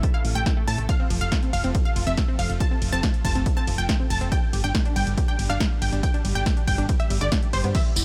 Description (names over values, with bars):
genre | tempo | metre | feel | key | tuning
uplifting trance | 140 BPM | 4/4 | straight | unclear | A4 = 440 Hz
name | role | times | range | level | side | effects
unison pluck | melody | 0.0-8.0 s | C5 to A5 | -33 LUFS | equal | sidechain pumping, dub echo
unison pluck | second line | 0.0-8.0 s | C6 to A6 | -38 LUFS | equal | sidechain pumping, delay
supersaw pad | sustained chords | 0.0-8.0 s | B2 to A4 | -39 LUFS | equal | sidechain pumping
tight sequenced synth | arpeggios | 0.0-8.0 s | D3 to A4 | -36 LUFS | equal | chorus, sidechain pumping, delay
electronic kick drum | drums | 0.0-7.8 s | none | -26 LUFS | equal | none
punchy analog drum machine | drums | 0.0-8.0 s | crash cymbal, hi-hat, ride cymbal, snare drum | -34 LUFS | equal | sidechain pumping on hats, sidechain pumping on cymbals
solid FM bass | bass | 0.2-8.0 s | E1 to A2 | -28 LUFS | equal | sidechain pumping
tambourine | percussion | 7.7-8.0 s | none | -29 LUFS | equal | none
room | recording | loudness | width
digital ambience | none | -23 LUFS | mono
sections
0.0-8.0 A section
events
none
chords
0.0 Am; 0.9 F; 4.3 G